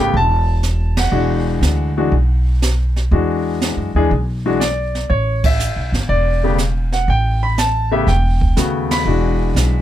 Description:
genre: jazz piano trio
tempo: 121 BPM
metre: 4/4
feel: swing 69% on 8ths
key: E mixolydian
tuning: A4 = 440 Hz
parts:
  - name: warm concert grand piano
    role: melody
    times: 0.0-9.8 s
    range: C#3 to B5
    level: -18 LUFS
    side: left 2 dB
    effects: none
  - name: upright bass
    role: bass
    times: 0.0-9.8 s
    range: E1 to F#2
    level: -17 LUFS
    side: equal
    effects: none
  - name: jazz brush drum kit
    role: drums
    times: 0.1-9.8 s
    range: brushed snare drum, hi-hat, kick drum, ride cymbal, snare drum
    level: -22 LUFS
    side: right 2 dB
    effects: none
room: little or no reverb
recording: close, detailed microphones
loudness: -14 LUFS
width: side -12 dB against mid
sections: 0.0-9.8 A section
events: band accent 0.9, 5.3, 8.8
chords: 0.0 A7(no3); 1.1 E9; 5.1 A9; 9.1 E9

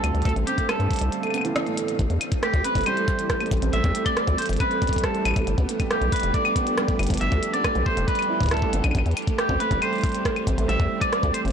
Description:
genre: IDM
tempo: 138 BPM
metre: 4/4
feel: straight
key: A minor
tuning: A4 = 440 Hz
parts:
  - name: clean electric guitar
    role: melody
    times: 0.0-11.4 s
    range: G4 to E5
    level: -27 LUFS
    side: equal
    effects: ping-pong delay
  - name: soft string machine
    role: sustained chords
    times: 0.0-11.5 s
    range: D3 to F5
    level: -33 LUFS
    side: left 1 dB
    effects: phaser, ensemble chorus
  - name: felt-muted upright piano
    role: arpeggios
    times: 0.0-11.5 s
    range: A2 to E4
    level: -28 LUFS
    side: right 5 dB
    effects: tape echo
  - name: deep acid bass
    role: bass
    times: 0.0-11.5 s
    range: F1 to G2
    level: -24 LUFS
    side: left 1 dB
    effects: transformer saturation
  - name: glitchy drum kit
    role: drums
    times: 0.0-11.5 s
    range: claves, hi-hat, rim click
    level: -29 LUFS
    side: left 1 dB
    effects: soft clipping on snare
  - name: electronic kick drum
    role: drums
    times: 0.3-11.3 s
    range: none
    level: -25 LUFS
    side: left 1 dB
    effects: none
room: light reverb, digital ambience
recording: blown-out, overdriven recording, overdrive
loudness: -21 LUFS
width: side -7 dB against mid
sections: 0.0-2.0 A section; 2.0-11.5 B section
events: filter sweep on felt piano 0.0-2.0; break 1.1-2.0; band accent 1.6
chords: 0.0 Dm7; 2.0 Am7; 5.5 G7; 8.9 Am7

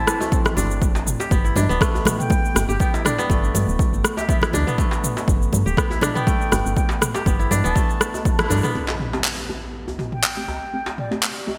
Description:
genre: afro house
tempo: 121 BPM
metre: 4/4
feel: swing 54% on 16ths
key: unclear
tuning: A4 = 440 Hz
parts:
  - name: concert flute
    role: melody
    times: 0.0-11.1 s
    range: D5 to A5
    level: -33 LUFS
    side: equal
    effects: digital delay
  - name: kora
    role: arpeggios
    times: 0.0-10.5 s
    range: E3 to G4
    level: -28 LUFS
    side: equal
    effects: sidechain pumping, digital delay
  - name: woody FM bass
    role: bass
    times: 0.0-8.6 s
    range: D1 to G2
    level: -25 LUFS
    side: equal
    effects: sidechain pumping
  - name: deep house drum kit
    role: drums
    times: 0.1-11.3 s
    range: handclaps, rim click, shaker, toms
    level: -26 LUFS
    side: equal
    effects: studio reverb
  - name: djembe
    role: percussion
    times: 0.2-11.6 s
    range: none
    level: -34 LUFS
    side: equal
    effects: none
  - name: electronic kick drum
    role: drums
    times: 0.3-8.4 s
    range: none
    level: -23 LUFS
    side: equal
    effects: studio reverb
  - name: congas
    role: percussion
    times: 0.5-8.6 s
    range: none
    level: -31 LUFS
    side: equal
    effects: none
  - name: deep mellow chord stab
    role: stabs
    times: 8.7-11.6 s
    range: A3 to G4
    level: -34 LUFS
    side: equal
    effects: chorus, sidechain pumping, digital delay
  - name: impact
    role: sound effects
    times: 8.8-10.7 s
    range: none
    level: -37 LUFS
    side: equal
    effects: none
room: moderate lush hall reverb, RT60 2.6 s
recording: bright 1980s-style digital production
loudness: -21 LUFS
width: mono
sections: 0.0-8.8 A section; 8.8-11.6 B section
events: band accent 8.4; impact 8.8-10.7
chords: 0.0 Am7; 0.8 G; 8.8 Am7

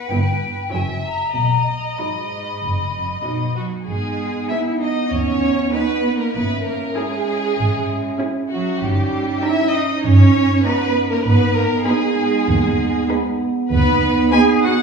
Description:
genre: cinematic, playful, whimsical film cue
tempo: 97 BPM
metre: 4/4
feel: straight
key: B major, G# minor from 3.9 s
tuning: A4 = 437 Hz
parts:
  - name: hollow small flute group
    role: second line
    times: 0.0-3.6 s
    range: F#5 to B5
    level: -24 LUFS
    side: left 5 dB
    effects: none
  - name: muted chamber violin section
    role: second line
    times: 0.0-14.8 s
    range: F#4 to G#5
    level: -22 LUFS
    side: equal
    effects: none
  - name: muted chamber violin section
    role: melody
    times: 0.1-14.8 s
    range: B4 to B5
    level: -32 LUFS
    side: left 2 dB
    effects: none
  - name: muted chamber viola section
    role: accompaniment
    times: 0.1-14.8 s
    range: F#3 to E4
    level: -25 LUFS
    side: right 4 dB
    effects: none
  - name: muted chamber cello section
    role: bass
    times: 0.1-14.7 s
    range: F#2 to G#4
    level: -23 LUFS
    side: right 3 dB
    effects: none
  - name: muted chamber double bass section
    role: bass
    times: 0.1-14.2 s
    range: F#1 to D#2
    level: -20 LUFS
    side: right 1 dB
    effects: none
  - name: mellow French horn section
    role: sustained chords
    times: 3.9-14.8 s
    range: B3 to E4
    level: -22 LUFS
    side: right 2 dB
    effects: none
room: wet recital hall reverb, RT60 1.5 s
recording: heard from further back in the room, studio ambience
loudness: -16 LUFS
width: side -5 dB against mid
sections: 0.0-3.9 A section; 3.9-14.8 B section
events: none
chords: 0.1 Em/G; 0.7 F#7; 1.3 B; 3.9 G#m; 6.3 C#m/G#; 8.8 D#7/G; 11.3 G#m; 13.7 B/D#

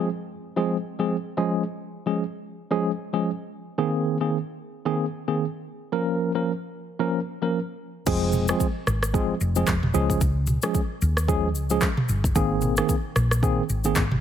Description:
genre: afrobeats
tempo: 112 BPM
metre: 4/4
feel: swing 58% on 16ths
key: unclear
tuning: A4 = 440 Hz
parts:
  - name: tine electric piano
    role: accompaniment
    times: 0.0-14.0 s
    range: Eb3 to Bb4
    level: -25 LUFS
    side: right 1 dB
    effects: medium stereo tremolo
  - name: hollow-body short-scale fingered electric bass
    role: bass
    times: 8.1-14.2 s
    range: F1 to Eb2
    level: -24 LUFS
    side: equal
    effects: none
  - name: afro-pop drum kit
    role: drums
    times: 8.1-14.2 s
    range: crash cymbal, handclaps, kick drum, rim click, shaker, toms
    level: -25 LUFS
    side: equal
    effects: none
room: light reverb, digital ambience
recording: heavily compressed radio sound, multiband compression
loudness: -22 LUFS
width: side -9 dB against mid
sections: 0.0-8.1 A section; 8.1-14.2 B section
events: none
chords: 0.0 Fm; 1.4 Db; 3.8 Abadd9; 5.9 Bbm; 8.1 Fm; 9.9 Db; 12.4 Abadd9

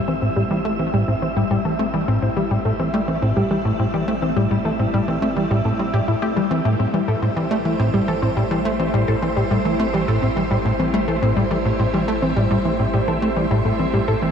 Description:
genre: ambient, sequencer-driven space music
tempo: 105 BPM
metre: 4/4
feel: straight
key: A minor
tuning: A4 = 441 Hz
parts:
  - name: evolving wavetable pad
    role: sustained chords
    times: 0.0-14.3 s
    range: A3 to E5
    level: -29 LUFS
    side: right 1 dB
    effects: ensemble chorus, built-in reverb, phaser
  - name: wide unison pluck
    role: arpeggios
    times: 0.0-14.3 s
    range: G3 to A4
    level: -23 LUFS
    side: moving between left 6 dB and right 1 dB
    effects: auto-pan, tape echo
  - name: warm sub bass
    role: bass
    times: 0.0-14.3 s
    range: A1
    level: -34 LUFS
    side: equal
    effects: none
  - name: wind-like tuned noise texture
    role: texture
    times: 0.0-14.3 s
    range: E4 to E5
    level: -26 LUFS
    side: right 1 dB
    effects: built-in reverb
  - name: tight sequencer bass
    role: riff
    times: 0.1-14.3 s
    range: A2 to A3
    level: -21 LUFS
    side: equal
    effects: wide subtle chorus, cassette tape, tape echo
room: moderate shimmer reverb, RT60 7.4 s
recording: dark, warm production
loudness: -18 LUFS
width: side -7 dB against mid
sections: 0.0-14.3 A section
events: fade-in on ambient pad 0.0-14.3; fade-in on sub bass 0.0-14.3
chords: 0.0 Am7

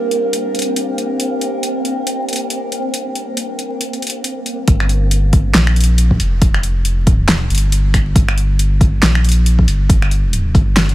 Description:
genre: deep dubstep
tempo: 138 BPM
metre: 4/4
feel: swing 58% on 16ths, half-time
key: G minor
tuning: A4 = 441 Hz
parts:
  - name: overtone-sweeping drone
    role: sustained chords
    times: 0.0-4.7 s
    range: G3 to Bb4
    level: -23 LUFS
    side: right 2 dB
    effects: chorus, built-in reverb, phaser
  - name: wind-like tuned noise texture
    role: texture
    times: 0.0-4.7 s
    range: Bb3 to C4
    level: -23 LUFS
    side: left 1 dB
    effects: built-in reverb
  - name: deep house drum kit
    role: drums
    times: 0.1-10.9 s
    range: finger snaps, handclaps, hi-hat, snare drum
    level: -18 LUFS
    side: equal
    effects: none
  - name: soft dub sub bass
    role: bass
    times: 4.7-10.9 s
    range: F1 to Bb1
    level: -14 LUFS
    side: equal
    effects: none
  - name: electronic kick drum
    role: drums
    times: 4.7-10.6 s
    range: none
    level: -13 LUFS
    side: equal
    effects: none
room: digital ambience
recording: vinyl crackle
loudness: -13 LUFS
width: side -16 dB against mid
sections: 0.0-4.7 A section; 4.7-10.9 B section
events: drop 4.7-10.9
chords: 0.0 Gm

